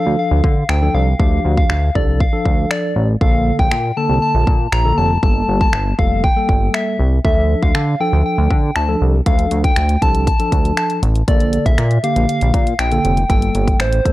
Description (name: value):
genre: dance-pop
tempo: 119 BPM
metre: 4/4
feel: straight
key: D minor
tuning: A4 = 440 Hz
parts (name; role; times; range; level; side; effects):
- soft struck synth lead; melody; 0.0-14.1 s; C5 to Bb5; -20 LUFS; left 1 dB; chorus, analog delay
- tine electric piano; accompaniment; 0.0-14.1 s; D3 to A4; -22 LUFS; equal; medium stereo tremolo, sidechain pumping
- chorused synth bass; bass; 0.1-14.1 s; F1 to D3; -16 LUFS; equal; sidechain pumping
- pop drum kit; drums; 0.4-14.1 s; finger snaps, hi-hat, kick drum; -17 LUFS; equal; none
room: little or no reverb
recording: dry, gritty hardware recording, cassette tape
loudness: -13 LUFS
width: side -16 dB against mid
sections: 0.0-14.1 A section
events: none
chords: 0.0 Dm; 3.2 Bbmaj7; 5.2 Gmadd9; 7.2 Dm; 11.3 Bbmaj7; 13.3 Gmadd9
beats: 0.19 0.69 | 1.20 1.70 2.20 2.71 | 3.21 3.72 4.22 4.72 | 5.23 5.73 6.24 6.74 | 7.25 7.75 8.26 8.76 | 9.26 9.77 10.27 10.78 | 11.28 11.78 12.29 12.79 | 13.30 13.80